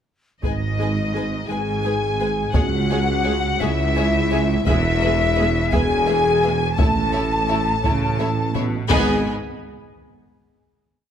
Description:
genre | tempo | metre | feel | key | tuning
cinematic, epic orchestral film score | 57 BPM (dotted quarters) | 6/8 | straight | G# phrygian | A4 = 440 Hz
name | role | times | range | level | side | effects
warm symphonic violin section | melody | 0.4-9.3 s | D#5 to A5 | -27 LUFS | left 3 dB | none
concert flute | second line | 0.4-9.3 s | D#5 to A5 | -26 LUFS | left 1 dB | none
rich studio viola section | accompaniment | 0.4-9.3 s | G#3 to G#4 | -28 LUFS | equal | none
mellow French horn section | sustained chords | 0.4-9.2 s | D#4 to A4 | -25 LUFS | left 5 dB | none
clear symphonic cello section | bass | 0.4-9.3 s | C#2 to C#3 | -27 LUFS | right 2 dB | none
mellow tuba | bass | 0.4-9.2 s | E1 to C#2 | -26 LUFS | right 4 dB | none
warm symphonic double bass section | bass | 0.4-9.3 s | E1 to C#2 | -26 LUFS | right 3 dB | none
taiko ensemble | drums | 0.4-10.3 s | none | -23 LUFS | equal | none
dark chamber violin section | second line | 0.5-9.3 s | B4 to B5 | -31 LUFS | left 3 dB | none
room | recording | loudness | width
moderate concert hall reverb, RT60 1.8 s | close, detailed microphones | -18 LUFS | side -8 dB against mid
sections
0.4-8.9 theme; 8.9-11.0 final chord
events
none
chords
0.4 G#m; 2.6 C#m; 4.7 E; 6.8 A; 8.9 G#m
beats
| 0.44 1.50 | 2.56 3.62 | 4.68 5.74 | 6.79 7.85 | 8.91 9.96

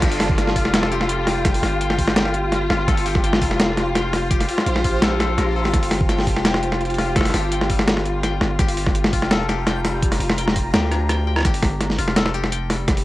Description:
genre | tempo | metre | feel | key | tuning
half-time drum and bass | 168 BPM | 4/4 | half-time | G minor | A4 = 440 Hz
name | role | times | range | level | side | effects
dark symphonic string section | sustained chords | 0.0-11.4 s | F4 | -25 LUFS | left 2 dB | sidechain pumping, cassette tape
koto | arpeggios | 0.0-13.0 s | G3 to G5 | -29 LUFS | left 6 dB | cassette tape, analog delay
long sustained 808-style bass | bass | 0.0-13.0 s | F1 to D2 | -24 LUFS | equal | tube saturation
boom bap sampler-style drum kit | drums | 0.0-13.0 s | crash cymbal, hi-hat, rim click, snare drum | -21 LUFS | equal | overdrive, cassette tape
electronic kick drum | drums | 0.0-13.0 s | none | -21 LUFS | equal | overdrive, cassette tape
backwards swelling texture | texture | 0.0-11.5 s | G4 to Bb5 | -29 LUFS | right 1 dB | built-in reverb, cassette tape
room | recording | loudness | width
light reverb | home recording on cassette | -17 LUFS | side -16 dB against mid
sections
0.0-11.4 A section; 11.4-13.0 A section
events
drop 0.0-11.4, 11.4-13.0; drum fill 10.9-11.4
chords
0.0 Gm; 11.4 G5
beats
| 0.02 0.38 0.73 1.09 | 1.45 1.81 2.16 2.52 | 2.88 3.23 3.59 3.95 | 4.31 4.66 5.02 5.38 | 5.74 6.09 6.45 6.81 | 7.16 7.52 7.88 8.23 | 8.59 8.95 9.31 9.66 | 10.02 10.38 10.73 11.09 | 11.45 11.81 12.16 12.52 | 12.88

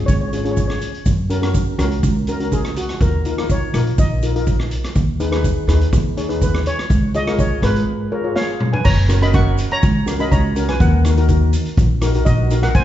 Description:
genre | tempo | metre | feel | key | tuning
calypso | 123 BPM | 4/4 | straight | F# major | A4 = 443 Hz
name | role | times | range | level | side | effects
steel pan | melody | 0.0-12.8 s | F#4 to C#6 | -24 LUFS | right 1 dB | none
steel pan | accompaniment | 0.0-12.8 s | C#4 to C#5 | -24 LUFS | left 2 dB | none
upright bass | bass | 0.0-12.8 s | F#1 to F#2 | -18 LUFS | equal | none
street-band drum kit | drums | 0.1-12.8 s | crash cymbal, hi-hat, kick drum, rim click, snare drum, toms | -19 LUFS | equal | none
egg shaker | percussion | 0.1-12.8 s | none | -40 LUFS | right 6 dB | none
room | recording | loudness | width
wet recital hall reverb, RT60 1.6 s | heard from further back in the room, nothing above 7.7 kHz | -15 LUFS | side -12 dB against mid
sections
0.0-8.9 A section; 8.9-12.8 B section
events
steel pan solo 0.0-8.9; break 7.9-8.9; drum fill 8.4-8.9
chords
0.0 C#; 1.1 F#; 3.0 D#sus2; 5.0 G#m/D#; 6.9 C#; 8.9 F#; 10.8 D#m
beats
0.08 0.57 | 1.06 1.55 2.03 2.52 | 3.01 3.50 3.98 4.47 | 4.96 5.45 5.93 6.42 | 6.91 7.39 7.88 8.37 | 8.86 9.34 9.83 10.32 | 10.80 11.29 11.78 12.26 | 12.75

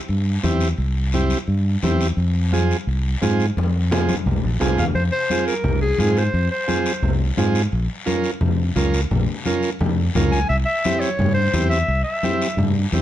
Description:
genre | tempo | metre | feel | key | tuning
latin, cumbia | 173 BPM | 4/4 | straight | F harmonic minor | A4 = 441 Hz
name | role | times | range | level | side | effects
fingered electric bass | bass | 0.1-13.0 s | Bb1 to Ab2 | -20 LUFS | equal | none
guiro | percussion | 0.1-13.0 s | none | -33 LUFS | left 5 dB | none
overdriven combo organ | accompaniment | 0.4-13.0 s | C4 to Bb4 | -24 LUFS | right 4 dB | none
congas | percussion | 0.4-13.0 s | none | -26 LUFS | left 3 dB | none
clear clarinet | melody | 4.8-7.2, 10.3-12.7 s | Ab4 to Ab5 | -22 LUFS | left 1 dB | plate reverb
room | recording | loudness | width
light reverb | dark, warm production | -18 LUFS | side -12 dB against mid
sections
0.0-4.9 A section; 4.9-13.0 B section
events
drum fill 3.6-4.9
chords
0.0 C; 2.2 Fm; 7.7 Bbm; 10.5 C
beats
0.10 0.44 | 0.79 1.14 1.48 1.83 | 2.17 2.52 2.87 3.21 | 3.56 3.91 4.25 4.60 | 4.95 5.30 5.64 5.99 | 6.34 6.68 7.03 7.38 | 7.72 8.07 8.42 8.76 | 9.11 9.46 9.80 10.15 | 10.50 10.85 11.19 11.54 | 11.89 12.23 12.58 12.93

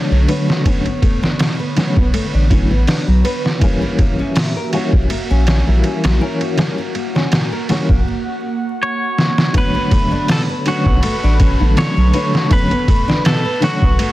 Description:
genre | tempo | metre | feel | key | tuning
trip hop | 81 BPM | 4/4 | swing 54% on 16ths | B minor | A4 = 440 Hz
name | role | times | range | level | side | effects
felt-muted upright piano | accompaniment | 0.0-13.8 s | D3 to C#5 | -21 LUFS | left 1 dB | tremolo
warbly tape-like pad | sustained chords | 0.0-14.1 s | D3 to B5 | -25 LUFS | right 1 dB | chorus, built-in reverb, phaser
nylon-string guitar | arpeggios | 0.0-14.1 s | A#2 to B4 | -23 LUFS | left 1 dB | tape echo
soft dub sub bass | bass | 0.1-14.0 s | A1 to B1 | -14 LUFS | equal | none
trip hop sampler-style drum kit | drums | 0.3-14.1 s | hi-hat, kick drum, ride cymbal, snare drum | -17 LUFS | equal | vintage 12-bit sampler grit
clean electric guitar | melody | 8.8-14.1 s | F#4 to C#5 | -21 LUFS | equal | tape echo
room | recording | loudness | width
digital ambience | dense, heavily limited modern master, vinyl crackle | -13 LUFS | side -16 dB against mid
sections
0.0-9.5 A section; 9.5-14.1 B section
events
drum fill 9.2-9.5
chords
0.0 Bm9; 3.6 F#7b9/A#; 9.5 Bm9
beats
| 0.66 1.40 2.14 2.88 | 3.62 4.36 5.10 5.84 | 6.58 7.32 8.06 8.80 | 9.55 10.29 11.03 11.77 | 12.51 13.25 13.99

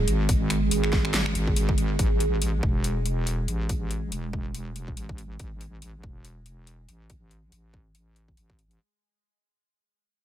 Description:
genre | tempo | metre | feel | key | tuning
deep dubstep | 141 BPM | 4/4 | swing 57% on 16ths, half-time | unclear | A4 = 440 Hz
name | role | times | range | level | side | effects
overtone-sweeping drone | sustained chords | 0.0-8.8 s | G#3 | -31 LUFS | right 3 dB | chorus, built-in reverb, phaser
wobble bass | bass | 0.0-8.8 s | E1 to A1 | -28 LUFS | equal | chorus
dubstep drum kit | drums | 0.1-8.8 s | finger snaps, hi-hat, snare drum | -31 LUFS | left 1 dB | none
electronic kick drum | drums | 0.3-8.6 s | none | -27 LUFS | equal | none
room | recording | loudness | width
digital ambience | none | -23 LUFS | side -11 dB against mid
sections
0.0-8.8 A section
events
fade-out 0.0-8.8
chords
0.0 G#5; 2.0 A5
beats
| 0.29 0.71 1.14 1.56 | 1.99 2.42 2.84 3.27 | 3.69 4.12 4.54 4.97 | 5.39 5.82 6.25 6.67 | 7.10 7.52 7.95 8.37

